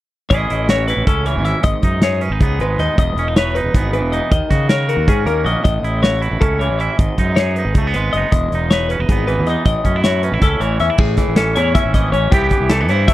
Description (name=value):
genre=math rock and midwest emo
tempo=314 BPM (eighths)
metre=7/8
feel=straight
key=A lydian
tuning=A4 = 441 Hz
part: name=twangy electric guitar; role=accompaniment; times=0.3-13.1 s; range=E2 to B4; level=-21 LUFS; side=right 5 dB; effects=none
part: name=twelve-string electric guitar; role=arpeggios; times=0.3-13.1 s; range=G4 to E5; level=-20 LUFS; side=left 5 dB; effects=none
part: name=fuzz fingered electric bass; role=bass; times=0.3-13.1 s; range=E1 to C#3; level=-19 LUFS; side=equal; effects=overdrive
part: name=modern studio drum kit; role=drums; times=0.3-13.1 s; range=crash cymbal, hi-hat, kick drum, snare drum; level=-16 LUFS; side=equal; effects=none
room=little or no reverb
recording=dry, close 1970s-style studio recording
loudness=-14 LUFS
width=side -15 dB against mid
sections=0.3-11.0 A section; 11.0-13.1 B section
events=none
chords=0.3 Amaj7; 1.6 G#m7; 3.0 Emaj7; 4.3 D#m7; 5.7 A; 7.0 G#m7; 8.3 Emaj7; 9.7 A; 11.0 Amaj7; 12.3 Cmaj7